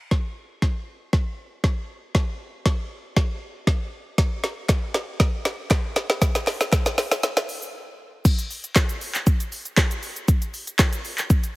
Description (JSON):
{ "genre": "pop", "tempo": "118 BPM", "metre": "4/4", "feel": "straight", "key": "none", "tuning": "none", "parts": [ { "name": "deep house drum kit", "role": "drums", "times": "0.1-11.5 s", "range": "crash cymbal, handclaps, hi-hat, kick drum, shaker, snare drum", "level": "-20 LUFS", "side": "equal", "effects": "none" }, { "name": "group handclap", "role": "percussion", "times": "4.7-10.9 s", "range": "none", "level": "-37 LUFS", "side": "left 1 dB", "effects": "none" } ], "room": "light reverb", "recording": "heavily compressed radio sound", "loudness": "-21 LUFS", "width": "side -21 dB against mid", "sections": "0.1-8.2 A section; 8.2-11.6 B section", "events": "build-up 0.1-8.2; drum fill 0.1-7.7; break 7.7-8.2; drop 8.2-11.6", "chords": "none" }